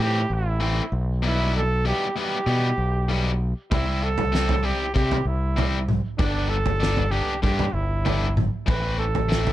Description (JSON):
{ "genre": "indie rock", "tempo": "97 BPM", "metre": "4/4", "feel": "straight", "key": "C major", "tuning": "A4 = 441 Hz", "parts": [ { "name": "breathy trumpet", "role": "melody", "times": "0.0-9.5 s", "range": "D4 to B4", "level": "-27 LUFS", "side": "right 3 dB", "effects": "slapback echo" }, { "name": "overdriven electric guitar", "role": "riff", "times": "0.0-9.5 s", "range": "B2 to E4", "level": "-28 LUFS", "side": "left 4 dB", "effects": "none" }, { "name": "growling fingered electric bass", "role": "bass", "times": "0.0-9.5 s", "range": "G1 to C3", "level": "-24 LUFS", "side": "equal", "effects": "overdrive" }, { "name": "loose indie drum kit", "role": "drums", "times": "3.7-9.5 s", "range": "kick drum, snare drum, toms", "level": "-25 LUFS", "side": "equal", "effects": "none" } ], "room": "little or no reverb", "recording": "none", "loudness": "-21 LUFS", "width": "side -14 dB against mid", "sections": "0.0-9.5 A section", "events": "none", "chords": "0.0 Am; 0.9 Em/B; 3.7 C; 6.2 G; 8.7 Am" }